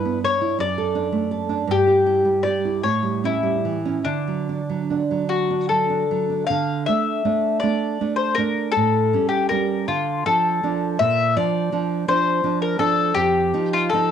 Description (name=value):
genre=romantic duo for mandolin and classical guitar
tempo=48-56 BPM (dotted quarters)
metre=6/8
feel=rubato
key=D major, D minor from 6.5 s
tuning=A4 = 440 Hz
part: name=mandolin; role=melody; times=0.0-14.1 s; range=D4 to F5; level=-21 LUFS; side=left 5 dB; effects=none
part: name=nylon-string guitar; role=accompaniment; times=0.0-14.1 s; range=F2 to B4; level=-23 LUFS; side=right 7 dB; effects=cassette tape
room=moderate studio reverb, RT60 0.6 s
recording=home recording on cassette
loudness=-18 LUFS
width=side -8 dB against mid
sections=0.0-6.5 A section; 6.5-14.1 B section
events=none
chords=0.0 Em/G; 0.6 D/F#; 1.7 Em/G; 2.8 A7; 4.1 D; 6.5 D5; 8.8 A7; 9.9 Dm; 11.0 Bb; 13.2 F9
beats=0.61 | 1.69 2.84 | 4.06 5.29 | 6.51 7.63 | 8.76 9.89 | 11.01 12.08 | 13.15